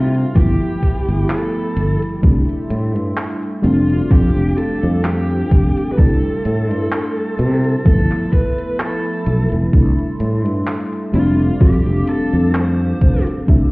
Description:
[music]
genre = vaporwave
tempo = 64 BPM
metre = 4/4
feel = swing 55% on 16ths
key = C major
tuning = A4 = 440 Hz
[part]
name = dark smooth lead guitar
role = melody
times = 0.0-13.2 s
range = F4 to C5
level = -25 LUFS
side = right 1 dB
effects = overdrive, vintage 12-bit sampler grit, tape echo
[part]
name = mellow FM electric piano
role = accompaniment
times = 0.0-13.7 s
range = F3 to E5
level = -20 LUFS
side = equal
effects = analog chorus, cassette tape
[part]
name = warbly tape-like pad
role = sustained chords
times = 0.0-13.7 s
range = A4 to D6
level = -33 LUFS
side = right 1 dB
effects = chorus, built-in reverb, vintage 12-bit sampler grit
[part]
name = sustaining fretless electric bass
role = bass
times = 0.0-13.7 s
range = F1 to C3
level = -16 LUFS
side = equal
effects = tube saturation
[part]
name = detuned 8-bit digital drum machine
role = drums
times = 0.1-13.7 s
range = handclaps, hi-hat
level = -27 LUFS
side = equal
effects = overdrive
[part]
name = electronic kick drum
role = drums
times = 0.4-13.7 s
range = none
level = -13 LUFS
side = equal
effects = overdrive
[sound]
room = little or no reverb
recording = heard muffled through a wall, stone room reverb, EQ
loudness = -14 LUFS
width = side -24 dB against mid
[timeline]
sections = 0.0-13.7 A section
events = none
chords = 0.4 G13; 2.2 C6; 3.6 F6; 6.0 C6; 7.9 G13 (rootless); 9.7 C6; 11.1 F6

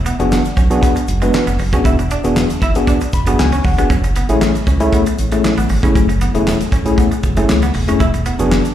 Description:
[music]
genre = early-eighties boogie funk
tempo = 117 BPM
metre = 4/4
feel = straight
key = F# minor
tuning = A4 = 437 Hz
[part]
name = rubbery square bass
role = bass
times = 0.0-8.6 s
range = E1 to C#2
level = -17 LUFS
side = right 1 dB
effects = none
[part]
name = electric guitar at the edge of break-up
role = riff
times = 0.1-8.4 s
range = G#3 to E4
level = -24 LUFS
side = right 4 dB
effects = analog chorus, slapback echo
[part]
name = damped 70s drum kit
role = drums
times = 0.1-8.7 s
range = handclaps, hi-hat, kick drum, snare drum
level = -18 LUFS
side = equal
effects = slapback echo
[part]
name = egg shaker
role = percussion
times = 0.1-8.7 s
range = none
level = -38 LUFS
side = right 3 dB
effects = none
[part]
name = tine electric piano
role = accompaniment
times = 0.2-8.6 s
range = A3 to B5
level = -17 LUFS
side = left 2 dB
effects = medium stereo tremolo, tube saturation, slapback echo
[sound]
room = light reverb, studio ambience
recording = live gig heard through the venue's PA, club reverb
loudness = -12 LUFS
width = side -11 dB against mid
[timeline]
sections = 0.0-8.7 A section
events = tine electric piano fill 2.9-3.9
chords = 0.0 E9; 3.9 F#m9; 8.0 E9

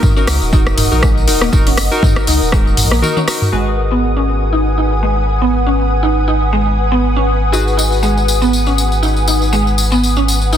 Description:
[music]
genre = afro house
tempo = 120 BPM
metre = 4/4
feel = swing 56% on 16ths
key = G# minor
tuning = A4 = 439 Hz
[part]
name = ethereal airy pad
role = sustained chords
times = 0.0-10.6 s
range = A#4 to D#6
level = -19 LUFS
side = left 2 dB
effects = ensemble chorus, built-in reverb, sidechain pumping
[part]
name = mallet-like synth pluck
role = arpeggios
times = 0.0-10.6 s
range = G#3 to D#4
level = -19 LUFS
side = right 1 dB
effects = lush chorus, sidechain pumping, ping-pong delay
[part]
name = warm analog keys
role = stabs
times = 0.0-10.6 s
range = D#4 to B4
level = -23 LUFS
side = left 1 dB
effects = chorus, sidechain pumping, ping-pong delay
[part]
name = electronic kick drum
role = drums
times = 0.0-2.6 s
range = none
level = -14 LUFS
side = equal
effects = small room ambience
[part]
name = house drum kit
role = drums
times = 0.0-3.5 s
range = hi-hat, rim click, toms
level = -18 LUFS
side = equal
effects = soft clipping on snare, small room ambience
[part]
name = tambourine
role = percussion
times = 0.0-3.5, 7.5-10.6 s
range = none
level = -22 LUFS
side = left 2 dB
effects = none
[part]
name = warm sub bass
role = bass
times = 0.3-10.6 s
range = D#1 to C#2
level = -16 LUFS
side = equal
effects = sidechain pumping
[sound]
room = light reverb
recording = dense, heavily limited modern master, faint mains hum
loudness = -11 LUFS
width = side -10 dB against mid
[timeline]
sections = 0.0-3.5 A section; 3.5-10.6 B section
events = kick drops out 3.0-3.5; drum fill 3.0-3.5; filter sweep on synth pluck 3.5-10.6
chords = 0.0 D#m; 3.5 G#m7

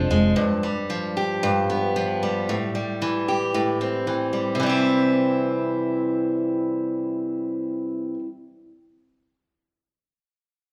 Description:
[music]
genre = pop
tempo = 114 BPM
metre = 4/4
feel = swing 60% on 16ths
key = C major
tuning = A4 = 441 Hz
[part]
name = picked steel-string acoustic guitar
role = accompaniment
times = 0.0-8.3 s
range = F2 to G4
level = -24 LUFS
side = equal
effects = none
[sound]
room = wet large studio reverb, RT60 1.4 s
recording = band playing live in one room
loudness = -24 LUFS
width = mono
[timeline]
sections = 0.0-4.6 A section; 4.6-8.8 B section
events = none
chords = 0.4 G7; 2.5 Am7; 4.6 C

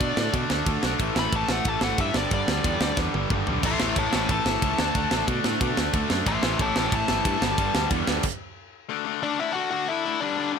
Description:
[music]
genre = punk rock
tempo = 182 BPM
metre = 4/4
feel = straight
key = unclear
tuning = A4 = 439 Hz
[part]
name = smooth overdriven lead guitar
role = melody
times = 0.0-10.5 s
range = D4 to C6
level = -28 LUFS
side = left 3 dB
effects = none
[part]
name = crunchy overdriven guitar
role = riff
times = 0.0-8.2 s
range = G2 to D4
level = -29 LUFS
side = right 15 dB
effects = none
[part]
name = overdriven electric guitar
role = riff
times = 0.0-10.6 s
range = G2 to D4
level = -29 LUFS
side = left 15 dB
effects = none
[part]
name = modern bright picked electric bass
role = bass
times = 0.0-8.2 s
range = G1 to B2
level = -30 LUFS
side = equal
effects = none
[part]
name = tight metal drum kit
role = drums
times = 0.0-8.3 s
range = crash cymbal, kick drum, ride cymbal, snare drum, toms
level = -27 LUFS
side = right 1 dB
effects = none
[part]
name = crunchy overdriven guitar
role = riff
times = 3.6-8.2 s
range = G2 to F#4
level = -32 LUFS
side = equal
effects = none
[sound]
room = light reverb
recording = none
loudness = -22 LUFS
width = side -6 dB against mid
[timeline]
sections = 0.0-8.9 A section; 8.9-10.6 B section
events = lead electric guitar solo 0.0-8.9; drum fill 3.0-3.6; stop 8.2-8.9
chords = 0.0 D5; 1.0 A5; 2.2 G5; 3.6 A; 4.8 D; 6.3 A; 7.4 G; 8.9 D

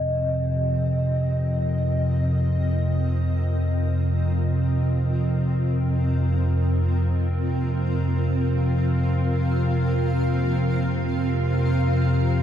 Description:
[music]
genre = dark ambient drone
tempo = free time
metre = none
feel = none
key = unclear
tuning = A4 = 440 Hz
[part]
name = granular cloud pad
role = sustained chords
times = 0.0-12.4 s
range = C4 to F5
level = -29 LUFS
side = equal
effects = built-in reverb
[part]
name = analog drone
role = drone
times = 0.0-12.4 s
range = F2 to C3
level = -21 LUFS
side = equal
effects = chorus
[part]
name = bronze singing bowl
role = texture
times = 0.0-12.4 s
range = Eb5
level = -32 LUFS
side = left 1 dB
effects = none
[sound]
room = wet huge ambient reverb, RT60 7.5 s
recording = in a vast, echoing space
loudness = -20 LUFS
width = side -10 dB against mid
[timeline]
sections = 0.0-12.4 A section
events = fade-in on ambient pad 0.0-12.4; filter sweep on synth drone 0.0-12.4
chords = 0.0 F7sus4

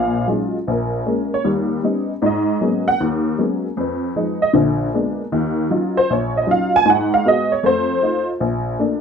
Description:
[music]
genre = solo jazz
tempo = 155 BPM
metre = 4/4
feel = swing 66% on 8ths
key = unclear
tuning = A4 = 445 Hz
[part]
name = honky-tonk upright piano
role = solo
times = 0.0-9.0 s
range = A#1 to G#5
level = -16 LUFS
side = equal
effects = none
[sound]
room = moderate club reverb, RT60 0.6 s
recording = minimal, uncompressed stereo recording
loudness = -16 LUFS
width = side -6 dB against mid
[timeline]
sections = 0.0-8.4 A section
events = honky-tonk piano solo 0.0-9.0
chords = 0.0 D#m11; 0.7 A#m7; 1.4 D#aug7; 2.2 G#m11; 3.8 Fm7b5; 4.5 A#7b9; 5.3 D#m9; 6.9 G#m7; 7.6 F7; 8.4 Bbmaj7

